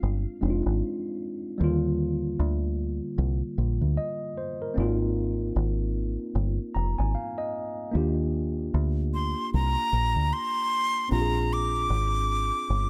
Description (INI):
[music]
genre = lovers rock reggae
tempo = 76 BPM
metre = 4/4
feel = swing 59% on 16ths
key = Eb major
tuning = A4 = 440 Hz
[part]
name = mellow tine electric piano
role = accompaniment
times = 0.0-12.9 s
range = D3 to Bb5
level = -33 LUFS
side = equal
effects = none
[part]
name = deep dub fingered electric bass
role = bass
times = 0.0-12.9 s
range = F1 to Eb2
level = -28 LUFS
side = equal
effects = none
[part]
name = breathy bright jazz flute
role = melody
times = 9.1-12.9 s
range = Bb5 to D6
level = -29 LUFS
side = equal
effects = tape echo
[sound]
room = light reverb, small room ambience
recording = none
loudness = -27 LUFS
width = mono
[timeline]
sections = 0.0-12.9 A section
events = tine electric piano fill 6.4-7.9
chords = 0.0 Bb7 (rootless); 1.6 Ebmaj7; 4.8 Ab69; 7.9 Ebmaj7; 11.1 Bb7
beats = 0.02 0.81 | 1.60 2.40 3.19 3.98 | 4.77 5.56 6.35 7.15 | 7.94 8.73 9.52 10.32 | 11.11 11.90 12.69